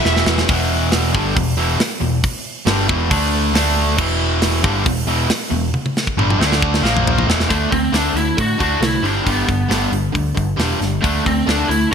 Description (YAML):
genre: hard rock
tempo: 137 BPM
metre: 4/4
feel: straight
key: E minor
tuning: A4 = 438 Hz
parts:
  - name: lead guitar through a small cranked amp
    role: melody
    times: 0.0-0.2, 7.5-11.9 s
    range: A3 to E5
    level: -21 LUFS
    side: right 1 dB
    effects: overdrive
  - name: distorted electric guitar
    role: riff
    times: 0.0-11.9 s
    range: E2 to D4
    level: -19 LUFS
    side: equal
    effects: overdrive
  - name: overdriven picked electric bass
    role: bass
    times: 0.1-11.8 s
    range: E1 to A2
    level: -20 LUFS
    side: equal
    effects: none
  - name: tight metal drum kit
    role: drums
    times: 0.1-11.8 s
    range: crash cymbal, hi-hat, kick drum, snare drum, toms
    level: -20 LUFS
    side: equal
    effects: none
room: light reverb, small room ambience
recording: bright 1980s-style digital production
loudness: -15 LUFS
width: side -7 dB against mid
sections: 0.5-7.5 A section; 7.5-11.9 B section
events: drum fill 0.0-0.5, 5.7-7.5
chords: 0.5 Em; 3.1 D5; 4.0 Em; 6.4 D5; 6.8 A#5; 7.3 E5; 7.5 D5; 9.0 G; 11.0 D5